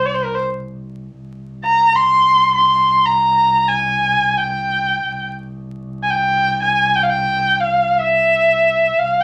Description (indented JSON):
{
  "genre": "Persian modal ensemble",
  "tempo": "free time",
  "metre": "none",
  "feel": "none",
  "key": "C dastgah homayun",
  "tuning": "A4 = 440 Hz",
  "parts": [
    { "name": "clear kamancheh", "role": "melody", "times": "0.0-9.2 s", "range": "Bb4 to C6", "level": "-16 LUFS", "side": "equal", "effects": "none" },
    { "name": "dark double bass", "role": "drone", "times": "0.0-9.2 s", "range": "C2", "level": "-32 LUFS", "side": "equal", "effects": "none" }
  ],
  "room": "moderate studio reverb, RT60 0.6 s",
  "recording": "vinyl crackle",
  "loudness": "-16 LUFS",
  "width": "mono",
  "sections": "0.0-1.2 A section; 1.2-9.2 A section",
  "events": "none",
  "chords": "none"
}